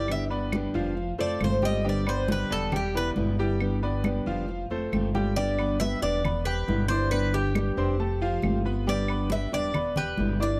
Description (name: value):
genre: latin, Cuban son and guajira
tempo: 137 BPM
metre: 4/4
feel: straight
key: unclear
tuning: A4 = 440 Hz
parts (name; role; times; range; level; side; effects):
- Cuban tres; melody; 0.0-10.6 s; G4 to E5; -32 LUFS; equal; none
- fingerpicked steel-string acoustic guitar; accompaniment; 0.0-10.6 s; B2 to G4; -34 LUFS; equal; none
- bright concert grand piano; arpeggios; 0.0-10.6 s; F3 to G6; -35 LUFS; equal; none
- upright bass; bass; 0.0-10.6 s; E1 to G1; -32 LUFS; equal; none
- claves; percussion; 0.1-10.0 s; none; -39 LUFS; equal; none
- congas; percussion; 0.1-10.6 s; none; -35 LUFS; equal; none
room: light reverb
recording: none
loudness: -27 LUFS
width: mono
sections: 0.0-5.4 A section; 5.4-10.6 B section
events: Cuban tres solo 0.0-5.4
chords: 0.1 G; 1.0 F7; 1.8 Em7; 3.6 G; 4.5 F7; 5.4 Em7; 7.1 G; 8.0 F7; 8.9 Em7